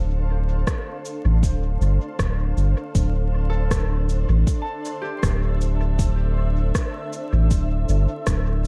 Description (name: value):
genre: ambient dub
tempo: 79 BPM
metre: 4/4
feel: straight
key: unclear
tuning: A4 = 443 Hz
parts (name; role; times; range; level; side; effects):
- granular cloud pad; sustained chords; 0.0-8.7 s; D4 to F5; -34 LUFS; equal; built-in reverb
- concert harp; arpeggios; 0.0-7.4 s; G4 to C6; -38 LUFS; equal; dub echo
- round analog bass; bass; 0.0-8.7 s; D1 to A1; -22 LUFS; equal; none
- electronic kick drum; drums; 0.7-8.4 s; none; -26 LUFS; equal; none
- electronic rim click and shaker; drums; 0.7-8.7 s; none; -34 LUFS; equal; dub echo
room: little or no reverb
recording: echo-heavy mix, vinyl crackle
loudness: -22 LUFS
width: mono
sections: 0.0-8.7 A section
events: none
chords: 0.0 Dm7; 3.0 Am/D